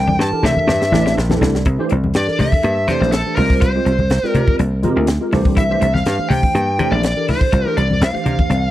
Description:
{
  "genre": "electric jazz fusion",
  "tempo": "123 BPM",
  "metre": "4/4",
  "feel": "straight",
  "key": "C mixolydian",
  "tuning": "A4 = 440 Hz",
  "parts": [
    { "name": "smooth overdriven lead guitar", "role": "melody", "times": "0.0-8.7 s", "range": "A4 to A5", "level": "-20 LUFS", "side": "equal", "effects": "none" },
    { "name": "dry thumbed slap bass", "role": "bass", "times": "0.0-8.7 s", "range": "A1 to C3", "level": "-18 LUFS", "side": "equal", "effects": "none" },
    { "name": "tine electric piano", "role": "accompaniment", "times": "0.1-8.5 s", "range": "E3 to G5", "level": "-22 LUFS", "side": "right 2 dB", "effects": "medium stereo tremolo, ensemble chorus" },
    { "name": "clean electric guitar", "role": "stabs", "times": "0.1-8.7 s", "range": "Bb3 to F4", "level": "-28 LUFS", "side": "left 5 dB", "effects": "wide subtle chorus" },
    { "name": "congas", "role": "percussion", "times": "0.1-8.6 s", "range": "none", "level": "-22 LUFS", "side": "left 2 dB", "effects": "none" },
    { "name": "crisp fusion drum kit", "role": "drums", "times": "0.2-8.6 s", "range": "hi-hat, kick drum, snare drum", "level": "-19 LUFS", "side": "equal", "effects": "none" }
  ],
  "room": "little or no reverb",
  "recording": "dry, close 1970s-style studio recording",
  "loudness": "-14 LUFS",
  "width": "side -14 dB against mid",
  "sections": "0.0-1.7 A section; 1.7-8.7 B section",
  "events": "drum fill 0.0-1.7; lead electric guitar solo 0.0-1.7; tine electric piano fill 0.9-1.7",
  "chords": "0.0 C13; 3.4 Fmadd9/C; 5.3 C13; 7.5 F6/C"
}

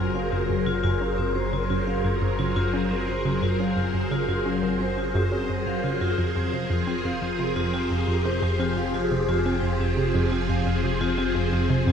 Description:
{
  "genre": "ambient, sequencer-driven space music",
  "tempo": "87 BPM",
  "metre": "4/4",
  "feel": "straight",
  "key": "unclear",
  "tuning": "A4 = 443 Hz",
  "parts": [
    { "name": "phased string machine", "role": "sustained chords", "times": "0.0-11.9 s", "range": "F3 to Bb4", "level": "-26 LUFS", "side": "equal", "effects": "ensemble chorus, phaser" },
    { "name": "vibraphone with hard mallets", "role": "arpeggios", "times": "0.0-11.8 s", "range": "C4 to F5", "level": "-31 LUFS", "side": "moving between left 7 dB and equal", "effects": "auto-pan, low-pass filter, ping-pong delay" },
    { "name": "analog pluck", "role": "riff", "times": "0.0-11.9 s", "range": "F2 to Db4", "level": "-27 LUFS", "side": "right 1 dB", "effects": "chorus, ping-pong delay" },
    { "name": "fat analog bass", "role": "bass", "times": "0.0-11.9 s", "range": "Gb1", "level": "-32 LUFS", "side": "equal", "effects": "none" },
    { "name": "bubbling stepped-filter texture", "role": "texture", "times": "0.0-11.9 s", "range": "C5", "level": "-35 LUFS", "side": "equal", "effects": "chorus, built-in reverb" }
  ],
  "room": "wet cathedral reverb, RT60 4.9 s",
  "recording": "dreamy mix soaked in reverb",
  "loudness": "-22 LUFS",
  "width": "side -7 dB against mid",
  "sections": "0.0-11.9 A section",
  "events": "filter sweep on synth arpeggio sound 0.0-11.9",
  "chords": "0.0 Gbadd9; 6.2 Fmadd9"
}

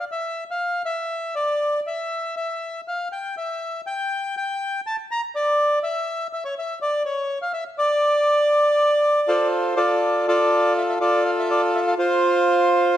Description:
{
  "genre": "tango",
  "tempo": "121 BPM",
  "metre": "4/4",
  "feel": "rubato",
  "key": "D minor",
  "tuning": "A4 = 442 Hz",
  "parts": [
    { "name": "bandoneon", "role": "solo", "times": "0.0-13.0 s", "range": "F4 to Bb5", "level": "-19 LUFS", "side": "equal", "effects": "none" }
  ],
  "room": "wet large studio reverb, RT60 1.3 s",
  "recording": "none",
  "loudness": "-19 LUFS",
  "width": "side -12 dB against mid",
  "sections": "0.0-10.0 A section; 10.0-13.0 B section",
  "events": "none",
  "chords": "0.0 N.C.; 8.0 Dm; 12.0 F5"
}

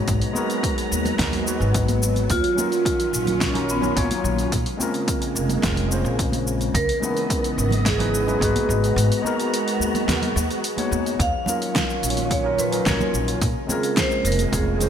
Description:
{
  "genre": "sunset chillout",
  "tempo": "108 BPM",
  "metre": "4/4",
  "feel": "straight",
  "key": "Eb minor",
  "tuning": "A4 = 443 Hz",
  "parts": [
    { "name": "overdriven tine electric piano", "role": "accompaniment", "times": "0.0-14.9 s", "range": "Cb3 to Db5", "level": "-26 LUFS", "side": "moving between left 5 dB and right 5 dB", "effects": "auto-pan, digital delay" },
    { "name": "soft string machine", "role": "sustained chords", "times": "0.0-14.9 s", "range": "Db3 to Bb5", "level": "-28 LUFS", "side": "equal", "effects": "ensemble chorus" },
    { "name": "upright bass", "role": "bass", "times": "0.0-14.9 s", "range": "F1 to Eb2", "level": "-24 LUFS", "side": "equal", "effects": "none" },
    { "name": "deep house drum kit", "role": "drums", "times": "0.1-14.9 s", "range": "hi-hat, shaker, snare drum", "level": "-27 LUFS", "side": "equal", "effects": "overdrive, small room ambience, gated reverb" },
    { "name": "electronic kick drum", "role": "drums", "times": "0.1-14.6 s", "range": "none", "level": "-27 LUFS", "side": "equal", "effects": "overdrive, small room ambience" },
    { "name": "congas", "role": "percussion", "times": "0.3-14.9 s", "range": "none", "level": "-32 LUFS", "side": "right 2 dB", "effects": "none" },
    { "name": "vibraphone with medium mallets", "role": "melody", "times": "2.3-14.9 s", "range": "Bb3 to F5", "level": "-25 LUFS", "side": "right 2 dB", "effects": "ping-pong delay" }
  ],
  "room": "moderate lush hall reverb, RT60 2.0 s, small room reverb",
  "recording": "bright 1980s-style digital production",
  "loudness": "-19 LUFS",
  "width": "side -8 dB against mid",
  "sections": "0.0-11.2 A section; 11.2-14.9 A section",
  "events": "kick drops out 9.0-11.2",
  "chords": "0.0 Abm9; 2.3 Ebm9; 4.5 Bbm9; 6.7 Dbm9; 8.7 Abm9; 11.2 Ebm9; 13.4 Bbm9"
}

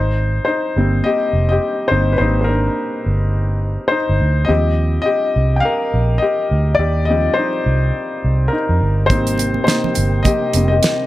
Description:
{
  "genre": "lush 1970s-style soul",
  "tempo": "104 BPM",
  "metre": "4/4",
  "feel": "swing 58% on 16ths",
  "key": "unclear",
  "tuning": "A4 = 441 Hz",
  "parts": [
    { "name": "warm baby grand piano", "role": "accompaniment", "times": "0.0-11.1 s", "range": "F3 to G5", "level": "-17 LUFS", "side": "left 2 dB", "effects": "none" },
    { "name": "vintage muted fingered electric bass", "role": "bass", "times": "0.0-10.8 s", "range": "F1 to F2", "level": "-16 LUFS", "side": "right 1 dB", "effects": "none" },
    { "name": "tonewheel organ", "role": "sustained chords", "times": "9.1-11.1 s", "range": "C3 to G4", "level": "-24 LUFS", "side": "right 3 dB", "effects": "slow rotary speaker" },
    { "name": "damped 70s drum kit", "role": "drums", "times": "9.1-11.0 s", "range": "hi-hat, kick drum, snare drum", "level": "-18 LUFS", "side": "right 1 dB", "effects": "none" },
    { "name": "congas", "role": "percussion", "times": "9.4-11.0 s", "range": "none", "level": "-25 LUFS", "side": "right 5 dB", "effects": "none" }
  ],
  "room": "light reverb, small room ambience",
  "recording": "none",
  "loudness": "-14 LUFS",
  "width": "side -16 dB against mid",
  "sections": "0.0-11.1 A section",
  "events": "grand piano solo 0.0-11.1",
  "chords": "0.0 Abmaj9; 4.5 Eb6; 9.1 Abmaj9"
}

